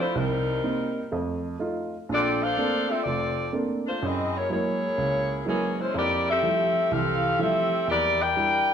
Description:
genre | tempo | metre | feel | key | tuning
jazz | 124 BPM | 4/4 | swing 66% on 8ths | unclear | A4 = 440 Hz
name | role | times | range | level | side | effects
dark saxophone section | melody | 0.0-8.7 s | E3 to G5 | -24 LUFS | left 2 dB | none
dark baby grand piano | accompaniment | 0.2-8.7 s | F1 to F4 | -28 LUFS | right 3 dB | none
room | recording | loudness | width
wet large studio reverb, RT60 1.2 s | none | -23 LUFS | side -8 dB against mid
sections
0.0-8.7 A section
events
none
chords
0.2 Cm7; 1.1 F7; 2.1 Bbmaj9; 4.0 F#9; 5.9 Fmaj9; 7.9 Em7b5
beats
| 0.16 0.64 1.12 1.60 | 2.09 2.57 3.05 3.53 | 4.01 4.50 4.98 5.46 | 5.94 6.43 6.91 7.39 | 7.87 8.36

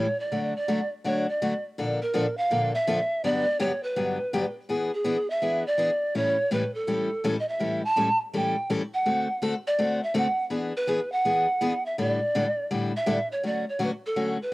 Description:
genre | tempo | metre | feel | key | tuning
jazz | 165 BPM | 4/4 | swing 61% on 8ths | D major | A4 = 442 Hz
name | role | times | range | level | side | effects
pan flute | melody | 0.0-14.5 s | G#4 to A5 | -25 LUFS | right 1 dB | cassette tape
picked steel-string acoustic guitar | accompaniment | 0.0-14.4 s | G2 to A4 | -27 LUFS | left 2 dB | cassette tape
room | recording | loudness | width
wet booth ambience, RT60 0.2 s | home recording on cassette | -24 LUFS | side -19 dB against mid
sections
0.0-1.8 A section; 1.8-13.4 B section; 13.4-14.5 A section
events
none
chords
0.3 D; 1.8 Bbmaj7; 3.2 Gmaj7; 4.7 E7; 6.1 A7; 9.1 D7; 10.5 E7; 12.0 A7sus4; 13.4 Dmaj7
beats
| 0.32 0.68 1.05 1.41 | 1.78 2.14 2.51 2.87 | 3.24 3.60 3.96 4.33 | 4.69 5.06 5.42 5.79 | 6.15 6.51 6.88 7.24 | 7.61 7.97 8.34 8.70 | 9.06 9.43 9.79 10.15 | 10.52 10.88 11.25 11.61 | 11.97 12.34 12.70 13.06 | 13.43 13.79 14.16 14.52

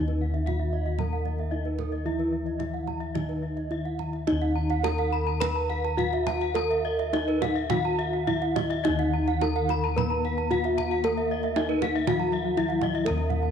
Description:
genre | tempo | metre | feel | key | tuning
Balinese gamelan | 105-124 BPM | 4/4 | straight | Eb pelog | A4 = 440 Hz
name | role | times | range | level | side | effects
gamelan-type bronze metallophone | melody | 0.0-13.5 s | Eb4 to Cb5-40c | -28 LUFS | equal | tape echo
gamelan-type bronze metallophone | accompaniment | 0.0-4.3, 8.9-13.5 s | Eb3 to Cb4-40c | -36 LUFS | left 9 dB | none
gamelan-type bronze metallophone | arpeggios | 0.0-13.5 s | Eb5 to Cb6-40c | -33 LUFS | left 7 dB | none
gamelan-type bossed gongs | bass | 0.0-13.5 s | Eb2 to Bb4-45c | -30 LUFS | equal | none
gamelan-type bronze metallophone | arpeggios | 0.1-13.4 s | Bb4-45c to Bb5-45c | -34 LUFS | right 9 dB | none
kendang | percussion | 0.1-13.5 s | none | -34 LUFS | right 10 dB | none
room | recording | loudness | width
moderate echo chamber reverb, RT60 1.9 s, studio reverb | 1960s-style stereo with parts hard left and right | -24 LUFS | side -8 dB against mid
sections
0.0-4.3 A section; 4.3-13.0 B section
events
none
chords
none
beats
0.47 0.99 1.52 | 2.05 2.60 3.15 3.70 | 4.27 4.84 5.41 5.99 | 6.56 7.13 7.70 8.27 | 8.84 9.41 9.96 10.50 | 11.03 11.55 12.06 12.56 | 13.05

